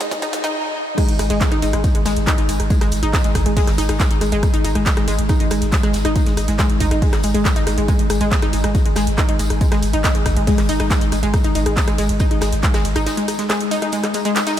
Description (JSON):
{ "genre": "driving peak-time techno", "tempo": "139 BPM", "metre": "4/4", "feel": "straight", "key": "unclear", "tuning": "A4 = 440 Hz", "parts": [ { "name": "analog pluck", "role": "riff", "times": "0.0-14.6 s", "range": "G#3 to D#4", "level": "-20 LUFS", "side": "left 1 dB", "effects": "chorus, vintage 12-bit sampler grit, sidechain pumping, ping-pong delay" }, { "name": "techno drum kit", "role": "drums", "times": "0.0-14.6 s", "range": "crash cymbal, handclaps, hi-hat, ride cymbal, rim click, snare drum", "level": "-24 LUFS", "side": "equal", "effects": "sidechain pumping on hats, high-pass filter on hats, high-pass filter on snare, sidechain pumping on cymbals, high-pass filter on cymbals, high-pass filter on room" }, { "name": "electronic kick drum", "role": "drums", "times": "0.1-12.7 s", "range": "none", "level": "-18 LUFS", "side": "equal", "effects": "none" }, { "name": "gated 80s drum kit", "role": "drums", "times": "1.0-14.6 s", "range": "hi-hat, snare drum, tambourine", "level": "-34 LUFS", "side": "left 2 dB", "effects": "sidechain pumping on hats, high-pass filter on hats, high-pass filter on snare, sidechain pumping on perc, high-pass filter on perc, high-pass filter on room" }, { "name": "saturated sub bass", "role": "bass", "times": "1.1-13.1 s", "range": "G#1", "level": "-22 LUFS", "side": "equal", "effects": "overdrive, sidechain pumping, low-pass filter" } ], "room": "moderate huge ambient reverb, RT60 6.3 s", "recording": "dreamy mix soaked in reverb, high-pass filter", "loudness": "-15 LUFS", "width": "side -11 dB against mid", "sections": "1.0-14.6 A section", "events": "drum fill 0.0-0.5, 14.4; drop 1.0-14.6; break 13.1-14.6", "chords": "0.0 N.C.; 1.0 G#5" }